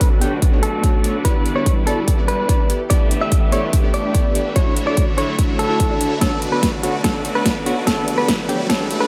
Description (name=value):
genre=future bass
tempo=145 BPM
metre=4/4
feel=half-time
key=G lydian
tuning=A4 = 435 Hz
part: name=direct-recorded clean electric guitar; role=melody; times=0.0-9.1 s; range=F#4 to E5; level=-25 LUFS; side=equal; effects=spring reverb, sidechain pumping, low-pass filter, dub echo
part: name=warm studio string section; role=sustained chords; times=0.0-9.1 s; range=D3 to C#5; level=-33 LUFS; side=equal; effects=sidechain pumping, low-pass filter
part: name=supersaw chords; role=riff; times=0.0-9.1 s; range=G3 to E5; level=-27 LUFS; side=equal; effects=phaser, sidechain pumping, low-pass filter
part: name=detuned saw bass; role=bass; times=0.0-9.1 s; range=E1 to D2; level=-34 LUFS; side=equal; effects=none
part: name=big-room dance drum kit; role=drums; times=0.0-9.0 s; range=hi-hat, snare drum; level=-25 LUFS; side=equal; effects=none
part: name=electronic kick drum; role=drums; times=0.0-8.8 s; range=none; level=-20 LUFS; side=equal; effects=none
part: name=glassy digital keys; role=accompaniment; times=0.2-9.1 s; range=B3 to D5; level=-28 LUFS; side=equal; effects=chorus, sidechain pumping
part: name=riser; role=sound effects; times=7.7-9.1 s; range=none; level=-36 LUFS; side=equal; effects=none
room=light reverb, digital ambience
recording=high-pass filter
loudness=-18 LUFS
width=mono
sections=0.0-9.1 A section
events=build-up 0.0-9.1; filter sweep on supersaw synth 0.0-9.1; filter sweep 0.0-9.1; drum fill 6.2-9.1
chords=0.0 Bm7; 1.2 Em7; 2.7 G69; 4.6 Dmaj9; 6.2 Bm7; 7.9 Em7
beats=0.01 0.42 0.84 | 1.25 1.66 2.08 2.49 | 2.90 3.32 3.73 4.15 | 4.56 4.97 5.39 5.80 | 6.21 6.63 7.04 7.46 | 7.87 8.28 8.70